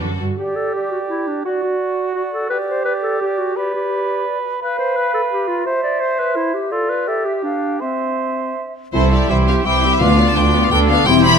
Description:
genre	quick classical-period movement for symphony orchestra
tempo	170 BPM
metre	3/4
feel	rubato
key	G major, C major from 4.6 s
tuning	A4 = 439 Hz
part	warm clarinet	second line	0.0-11.4 s	C4 to D5	-22 LUFS	left 1 dB	none
part	warm studio violin section	second line	0.0-0.2, 8.9-11.4 s	D4 to E5	-23 LUFS	left 1 dB	none
part	warm studio viola section	accompaniment	0.0-0.2, 8.9-11.4 s	D3 to E4	-22 LUFS	equal	none
part	warm studio cello section	bass	0.0-0.3, 8.9-11.4 s	C2 to G2	-20 LUFS	right 2 dB	none
part	concert flute	second line	0.4-11.4 s	D5 to D6	-25 LUFS	left 2 dB	none
part	dark cor anglais	second line	0.4-11.4 s	E4 to C5	-23 LUFS	right 5 dB	none
part	clear studio violin section	melody	8.9-11.4 s	C5 to B5	-18 LUFS	left 4 dB	none
part	mellow French horn section	sustained chords	8.9-11.2 s	B3 to F4	-19 LUFS	left 6 dB	none
part	warm studio double bass section	bass	8.9-11.4 s	E1 to D2	-18 LUFS	right 1 dB	none
part	timpani	percussion	10.0-10.5 s	D3	-25 LUFS	left 2 dB	none
room	light reverb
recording	close, detailed microphones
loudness	-16 LUFS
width	side -6 dB against mid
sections	0.4-8.9 A section; 8.9-11.4 B section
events	none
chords	0.0 D/F#; 0.4 G5; 1.5 D/F#; 2.5 G5; 3.6 G; 4.6 G7 (rootless); 5.7 C; 6.7 Dm/F; 7.1 Emadd11/G; 7.4 G5/D; 7.8 C; 10.0 Bdim/D

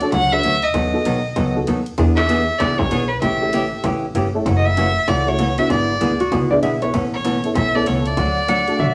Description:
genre	country, western swing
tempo	194 BPM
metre	4/4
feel	swing 62% on 8ths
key	D major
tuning	A4 = 435 Hz
part	clear fiddle	melody	0.0-8.9 s	B4 to F#5	-23 LUFS	equal	none
part	honky-tonk upright piano	accompaniment	0.0-8.8 s	A3 to B4	-26 LUFS	equal	none
part	industrial drum kit	drums	0.0-8.9 s	hi-hat, kick drum, ride cymbal, snare drum, toms	-29 LUFS	equal	distortion
part	hollow-body jazz guitar	accompaniment	0.1-8.9 s	B2 to A4	-24 LUFS	equal	none
part	upright bass	bass	0.1-8.9 s	F#1 to E2	-26 LUFS	equal	none
part	clean lap steel guitar	second line	6.2-8.9 s	F#4 to F#5	-22 LUFS	equal	none
room	wet studio reverb, RT60 0.5 s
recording	none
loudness	-18 LUFS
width	mono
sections	0.0-8.9 A section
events	none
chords	0.0 Dmaj7; 0.7 B7; 2.0 E7; 3.2 A7; 4.5 F#m7; 5.7 E7/G#; 6.9 Aadd9; 8.2 D

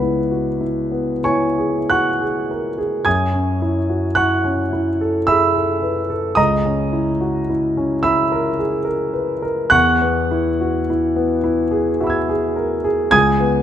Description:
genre	classical, impressionist solo piano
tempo	54 BPM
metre	3/4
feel	uneven beats, rubato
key	unclear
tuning	A4 = 440 Hz
part	warm concert grand piano	solo	0.0-13.6 s	C#2 to G#6	-16 LUFS	equal	none
room	moderate scoring stage reverb, RT60 1.9 s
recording	none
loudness	-16 LUFS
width	side -10 dB against mid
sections	0.0-13.6 A section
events	none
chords	0.0 E69/C#; 3.1 F#m9; 6.4 C#m6; 9.7 Eadd9

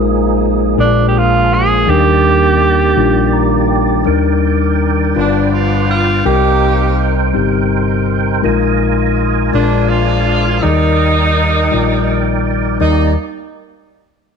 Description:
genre	slow gospel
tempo	55 BPM (dotted quarters)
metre	6/8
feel	straight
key	Eb major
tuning	A4 = 439 Hz
part	mellow tine electric piano	accompaniment	0.0-13.1 s	Eb2 to Bb5	-15 LUFS	left 9 dB	slow stereo tremolo
part	tonewheel organ	sustained chords	0.0-13.1 s	Eb3 to Ab5	-19 LUFS	right 9 dB	slow rotary speaker, overdrive, chorus vibrato
part	hollow-body short-scale fingered electric bass	bass	0.0-13.1 s	G1 to Eb2	-16 LUFS	right 2 dB	none
part	breathy tenor saxophone	melody	0.8-3.7 s	D4 to Ab4	-13 LUFS	right 3 dB	none
part	bright saxophone section	melody	5.2-13.1 s	F3 to G4	-16 LUFS	right 2 dB	none
room	moderate echo chamber reverb, RT60 1.4 s, studio reverb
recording	1960s-style stereo with parts hard left and right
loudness	-11 LUFS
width	side -6 dB against mid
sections	0.0-4.1 A section; 4.1-12.8 B section; 12.8-14.4 C section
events	tine electric piano fill 3.0-4.1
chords	0.0 Bb7sus4; 0.8 Bb7; 1.9 Ebmaj7; 5.2 G7; 6.2 Cm7; 8.4 Bb7sus4; 9.5 Bb7; 10.6 Ebmaj7

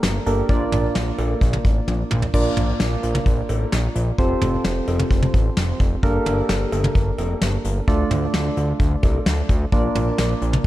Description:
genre	synth-pop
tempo	130 BPM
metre	4/4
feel	straight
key	Bb major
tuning	A4 = 437 Hz
part	soft electric-piano-like synth keys	accompaniment	0.0-10.7 s	A3 to D5	-24 LUFS	right 2 dB	chorus
part	fat analog bass	bass	0.0-10.7 s	F1 to D2	-22 LUFS	equal	none
part	soft brush drum kit	drums	0.0-10.7 s	cowbell, crash cymbal, hi-hat, kick drum, snare drum, toms	-21 LUFS	equal	none
room	studio reverb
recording	dark, warm production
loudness	-18 LUFS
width	side -15 dB against mid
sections	0.0-2.3 A section; 2.3-10.7 A section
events	drum fill 1.9-2.3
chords	0.5 Bb; 4.2 Fadd9; 6.0 Gmadd9; 7.9 Dm; 9.7 Bb

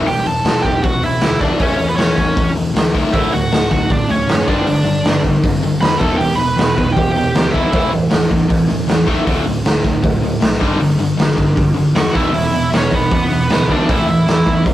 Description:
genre	punk rock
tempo	156 BPM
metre	4/4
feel	straight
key	unclear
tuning	A4 = 440 Hz
part	crunchy overdriven guitar	riff	0.0-14.7 s	D2 to A3	-19 LUFS	left 3 dB	none
part	overdriven picked electric bass	bass	0.0-14.7 s	D1 to G2	-26 LUFS	equal	none
part	biting lead guitar	melody	0.1-7.9, 12.0-14.6 s	B3 to B5	-19 LUFS	right 2 dB	overdrive
part	raw garage drum kit	drums	0.1-14.7 s	hi-hat, kick drum, snare drum	-16 LUFS	equal	none
part	distorted electric guitar	riff	3.1-14.7 s	D2 to A3	-20 LUFS	right 4 dB	distortion
room	light reverb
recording	rough rehearsal-room recording, warm saturation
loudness	-13 LUFS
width	side -14 dB against mid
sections	0.0-14.7 A section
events	none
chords	0.0 Em; 1.6 A/E; 3.1 D; 4.5 G; 6.0 Em; 7.7 A5/E; 9.3 D5; 10.6 G5; 12.1 E5; 13.9 A5/E

